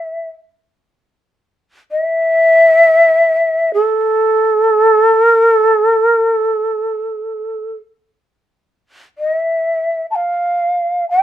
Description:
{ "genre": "japanese traditional", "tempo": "free time", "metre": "none", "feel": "none", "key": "unclear", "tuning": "A4 = 439 Hz", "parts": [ { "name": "mellow hollow shakuhachi", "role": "solo", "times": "0.0-11.2 s", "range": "A4 to A5", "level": "-11 LUFS", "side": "equal", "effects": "none" } ], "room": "light reverb", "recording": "minimal, uncompressed stereo recording", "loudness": "-11 LUFS", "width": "side -12 dB against mid", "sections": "0.0-8.0 A section; 8.0-11.2 A section", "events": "none", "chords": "none" }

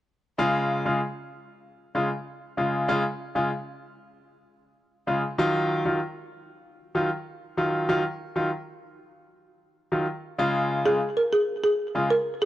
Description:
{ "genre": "dancehall", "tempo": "96 BPM", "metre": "4/4", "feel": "straight", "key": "Db major", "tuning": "A4 = 440 Hz", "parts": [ { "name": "bright concert grand piano", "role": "accompaniment", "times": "0.4-12.1 s", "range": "Db3 to F4", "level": "-24 LUFS", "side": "equal", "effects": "none" }, { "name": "folk marimba with soft mallets", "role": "melody", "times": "10.9-12.5 s", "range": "Ab4 to Bb4", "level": "-22 LUFS", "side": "right 1 dB", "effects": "tape echo" } ], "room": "light reverb, studio reverb", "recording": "dry, gritty hardware recording", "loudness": "-24 LUFS", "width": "side -13 dB against mid", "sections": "0.4-10.4 A section; 10.4-12.5 B section", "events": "none", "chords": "0.4 Db; 5.4 Ebmadd9; 10.4 Db" }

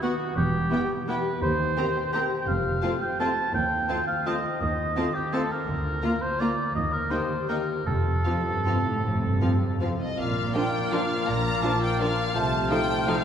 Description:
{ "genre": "classical", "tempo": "146-184 BPM", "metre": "3/4", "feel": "rubato", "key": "Bb major", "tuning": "A4 = 436 Hz", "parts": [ { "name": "rich studio violin section", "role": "melody", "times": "0.0-13.2 s", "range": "Eb5 to Bb5", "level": "-34 LUFS", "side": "left 1 dB", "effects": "none" }, { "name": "rich studio violin section", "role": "second line", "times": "0.0-13.2 s", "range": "C4 to Bb4", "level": "-37 LUFS", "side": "left 2 dB", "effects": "none" }, { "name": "warm oboe", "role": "second line", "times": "0.0-13.2 s", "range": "F#4 to A5", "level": "-29 LUFS", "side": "right 1 dB", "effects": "none" }, { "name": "warm studio viola section", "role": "accompaniment", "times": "0.0-13.2 s", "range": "F3 to Eb4", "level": "-33 LUFS", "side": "right 1 dB", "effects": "none" }, { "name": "mellow French horn section", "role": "sustained chords", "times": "0.0-13.2 s", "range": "A3 to G4", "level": "-35 LUFS", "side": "left 2 dB", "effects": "none" }, { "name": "concert harp", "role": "arpeggios", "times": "0.0-13.2 s", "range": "F2 to C5", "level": "-33 LUFS", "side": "left 3 dB", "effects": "none" }, { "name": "rich studio cello section", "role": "bass", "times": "0.4-12.6 s", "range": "C2 to C3", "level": "-32 LUFS", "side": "right 1 dB", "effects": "none" }, { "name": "rich studio double bass section", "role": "bass", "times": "0.4-12.6 s", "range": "E1 to Eb2", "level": "-32 LUFS", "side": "right 2 dB", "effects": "none" }, { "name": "clear clarinet", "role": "second line", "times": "10.2-13.2 s", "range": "F4", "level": "-35 LUFS", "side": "left 4 dB", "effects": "none" }, { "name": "silver concert flute", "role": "second line", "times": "10.2-13.2 s", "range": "F6", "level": "-34 LUFS", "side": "left 2 dB", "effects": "none" }, { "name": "mellow bassoon", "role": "accompaniment", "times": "10.2-13.2 s", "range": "A3 to Bb3", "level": "-31 LUFS", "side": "left 1 dB", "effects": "none" } ], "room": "wet church reverb, RT60 3.3 s", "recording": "recorded in a church or concert hall", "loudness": "-23 LUFS", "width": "side -8 dB against mid", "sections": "0.0-10.2 A section; 10.2-13.2 B section", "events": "none", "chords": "0.4 Em; 1.4 Cm7/Eb; 2.5 F; 3.5 F7/Eb; 5.7 Bb/D; 6.8 Eb; 7.9 F; 10.2 Bb; 12.4 F7/C" }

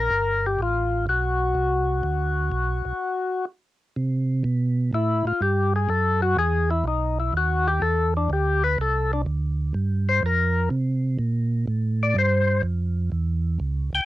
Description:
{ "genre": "soul jazz organ trio", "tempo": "124 BPM", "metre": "4/4", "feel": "swing 68% on 8ths", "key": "G major, C major from 4.0 s", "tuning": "A4 = 440 Hz", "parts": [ { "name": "percussive tonewheel organ", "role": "melody", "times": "0.0-14.1 s", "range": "D4 to G5", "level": "-23 LUFS", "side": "left 3 dB", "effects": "slow rotary speaker, cassette tape" }, { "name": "mellow tonewheel organ", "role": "bass", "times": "0.0-14.0 s", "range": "G1 to C3", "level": "-23 LUFS", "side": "right 2 dB", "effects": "slow rotary speaker" } ], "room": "moderate booth ambience, RT60 0.2 s", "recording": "home recording on cassette", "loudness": "-21 LUFS", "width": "side -15 dB against mid", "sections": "0.0-4.0 A section; 4.0-14.1 B section", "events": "break 3.0-4.0; tonewheel organ solo 4.0-14.1", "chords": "0.1 Gmaj7; 4.0 C5; 5.9 Eadd9; 6.9 B; 7.8 C69; 9.7 Gm7; 10.7 Bbsus2; 11.7 Fmaj9" }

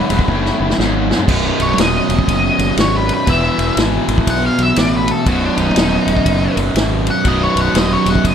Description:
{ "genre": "blues rock power trio and southern rock", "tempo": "121 BPM", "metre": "4/4", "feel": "swing 63% on 8ths", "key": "B mixolydian", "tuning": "A4 = 440 Hz", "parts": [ { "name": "octave-fuzz lead guitar", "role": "melody", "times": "0.0-8.3 s", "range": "D4 to F#5", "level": "-20 LUFS", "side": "left 1 dB", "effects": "distortion" }, { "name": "cranked stack guitar", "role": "riff", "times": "0.0-8.3 s", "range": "B1 to E3", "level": "-16 LUFS", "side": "right 1 dB", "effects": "overdrive" }, { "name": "fuzz fingered electric bass", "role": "bass", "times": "0.1-8.3 s", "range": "B0 to B1", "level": "-19 LUFS", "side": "equal", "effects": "overdrive" }, { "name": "vintage drum kit", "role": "drums", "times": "0.1-8.3 s", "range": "crash cymbal, kick drum, ride cymbal, snare drum, toms", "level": "-19 LUFS", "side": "left 1 dB", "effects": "none" } ], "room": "small room reverb", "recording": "none", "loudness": "-12 LUFS", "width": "side -8 dB against mid", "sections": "0.0-1.3 A section; 1.3-8.3 B section", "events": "drum fill 0.3-1.3; lead electric guitar solo 1.3-8.3", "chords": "0.0 B7(no3); 1.3 B; 3.3 E; 5.3 B" }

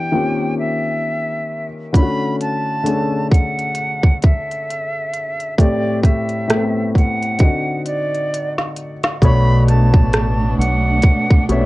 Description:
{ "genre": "lo-fi hip hop", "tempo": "66 BPM", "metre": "4/4", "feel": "swing 58% on 16ths", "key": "B minor", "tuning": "A4 = 440 Hz", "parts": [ { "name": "bright concert flute", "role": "melody", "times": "0.0-11.7 s", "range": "D5 to B5", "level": "-22 LUFS", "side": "right 1 dB", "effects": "none" }, { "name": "warm upright piano", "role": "accompaniment", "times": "0.0-11.7 s", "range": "A2 to C#5", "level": "-20 LUFS", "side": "left 2 dB", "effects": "none" }, { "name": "organic electronic drum kit", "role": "drums", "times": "1.9-11.7 s", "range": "hi-hat, kick drum, rim click, snare drum", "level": "-13 LUFS", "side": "equal", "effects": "none" }, { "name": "warm studio string section", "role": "sustained chords", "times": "9.2-11.7 s", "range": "A3 to D4", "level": "-23 LUFS", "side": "right 2 dB", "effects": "none" }, { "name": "deep dub fingered electric bass", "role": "bass", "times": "9.2-11.7 s", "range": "A1 to B1", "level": "-16 LUFS", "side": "equal", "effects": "none" } ], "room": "light reverb", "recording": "cassette tape", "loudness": "-15 LUFS", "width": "side -19 dB against mid", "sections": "0.0-9.2 A section; 9.2-11.7 B section", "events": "drum fill 7.4-9.2", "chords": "0.1 D#13; 1.9 Dmaj7; 5.6 Am7; 7.4 D7b9; 9.2 Bm9" }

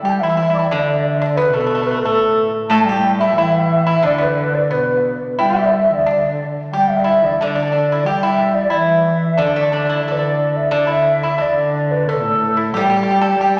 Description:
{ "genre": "chinese traditional, Chinese chamber ensemble", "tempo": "90 BPM", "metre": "2/4", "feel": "rubato", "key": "D zhi mode", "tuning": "A4 = 440 Hz", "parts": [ { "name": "xiao", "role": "melody", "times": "0.0-13.6 s", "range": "A4 to D6", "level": "-22 LUFS", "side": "equal", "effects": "none" }, { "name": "dark cello", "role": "second line", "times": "0.0-13.6 s", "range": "A2 to A3", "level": "-23 LUFS", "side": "equal", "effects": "none" }, { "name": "pipa", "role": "second line", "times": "0.0-13.6 s", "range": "A3 to A4", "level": "-26 LUFS", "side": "equal", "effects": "none" }, { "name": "xiao", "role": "second line", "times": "0.0-13.6 s", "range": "A4 to A5", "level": "-21 LUFS", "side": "equal", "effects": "none" }, { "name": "steel-string zither", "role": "accompaniment", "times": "0.0-13.6 s", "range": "A2 to A4", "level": "-29 LUFS", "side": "equal", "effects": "none" } ], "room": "wet scoring stage reverb, RT60 1.9 s", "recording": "none", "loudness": "-16 LUFS", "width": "mono", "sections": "0.0-10.7 A section; 10.7-13.6 B section", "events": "none", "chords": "none" }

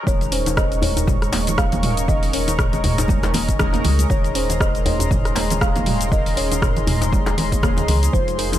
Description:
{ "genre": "afro house", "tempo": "119 BPM", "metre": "4/4", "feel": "swing 57% on 16ths", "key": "unclear", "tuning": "A4 = 440 Hz", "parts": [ { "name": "mellow synth brass", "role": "stabs", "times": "0.0-8.6 s", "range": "Ab3 to Db5", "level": "-28 LUFS", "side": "left 1 dB", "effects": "chorus, sidechain pumping, dub echo" }, { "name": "kalimba", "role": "melody", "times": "0.1-8.6 s", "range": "Bb4 to F5", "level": "-27 LUFS", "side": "equal", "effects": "vintage 12-bit sampler grit, dub echo" }, { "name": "warm analog pad", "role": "sustained chords", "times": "0.1-8.6 s", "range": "Ab4 to Eb6", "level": "-28 LUFS", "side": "equal", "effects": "chorus, sidechain pumping" }, { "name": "mallet-like synth pluck", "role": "arpeggios", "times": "0.1-8.6 s", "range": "Bb2 to Eb4", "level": "-29 LUFS", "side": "equal", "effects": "chorus, sidechain pumping" }, { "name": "warm sub bass", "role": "bass", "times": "0.1-8.6 s", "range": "Eb1 to Db2", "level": "-24 LUFS", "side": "equal", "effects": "sidechain pumping" }, { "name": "deep house drum kit", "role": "drums", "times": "0.1-8.6 s", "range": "hi-hat, rim click, shaker, toms", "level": "-25 LUFS", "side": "equal", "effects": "studio reverb" }, { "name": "electronic kick drum", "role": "drums", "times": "0.1-8.2 s", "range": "none", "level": "-21 LUFS", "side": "equal", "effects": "studio reverb" }, { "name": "djembe", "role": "percussion", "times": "0.5-8.6 s", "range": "none", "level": "-26 LUFS", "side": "left 2 dB", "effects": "none" }, { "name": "congas", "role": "percussion", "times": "0.8-8.1 s", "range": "none", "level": "-28 LUFS", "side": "right 3 dB", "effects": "none" } ], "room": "little or no reverb", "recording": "high-pass filter", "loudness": "-16 LUFS", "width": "side -12 dB against mid", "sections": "0.1-8.6 A section", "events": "drop 0.1-8.6", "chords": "0.1 Eb7sus4" }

